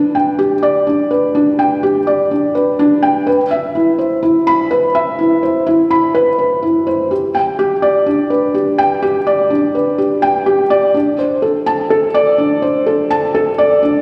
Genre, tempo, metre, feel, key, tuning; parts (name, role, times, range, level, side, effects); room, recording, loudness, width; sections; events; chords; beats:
electronica; 125 BPM; 4/4; straight; A4 = 439 Hz
felt-muted upright piano; solo; 0.0-14.0 s; D4 to B5; -14 LUFS; equal
wet scoring stage reverb, RT60 1.8 s; small room reverb; -14 LUFS; mono
0.0-14.0 A section
build-up 0.0-14.0
0.39 0.87 | 1.35 1.83 2.31 2.79 | 3.27 3.75 4.23 4.71 | 5.19 5.67 6.15 6.63 | 7.11 7.59 8.07 8.55 | 9.03 9.51 9.99 10.47 | 10.95 11.43 11.91 12.39 | 12.87 13.35 13.83